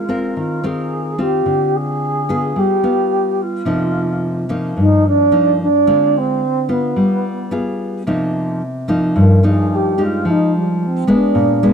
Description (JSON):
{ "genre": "bossa nova", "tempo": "109 BPM", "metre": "4/4", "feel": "straight", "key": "C minor", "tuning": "A4 = 436 Hz", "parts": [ { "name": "mellow wooden-headed alto flute", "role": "melody", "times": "0.0-11.7 s", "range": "G3 to Bb4", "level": "-17 LUFS", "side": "right 1 dB", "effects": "none" }, { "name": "nylon-string guitar", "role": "accompaniment", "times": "0.0-11.7 s", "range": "G2 to Bb4", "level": "-16 LUFS", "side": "left 1 dB", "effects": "none" } ], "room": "light reverb", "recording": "dark, warm production", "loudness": "-14 LUFS", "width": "side -7 dB against mid", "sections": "0.0-8.1 A section; 8.1-11.7 B section", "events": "alto flute solo 8.1-11.7", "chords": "0.0 Ab69; 1.5 Dm7b5; 2.6 G7b9; 3.7 Cm11; 5.9 Dm7b5; 7.0 G7b9; 8.1 Cm7; 10.3 Fm9" }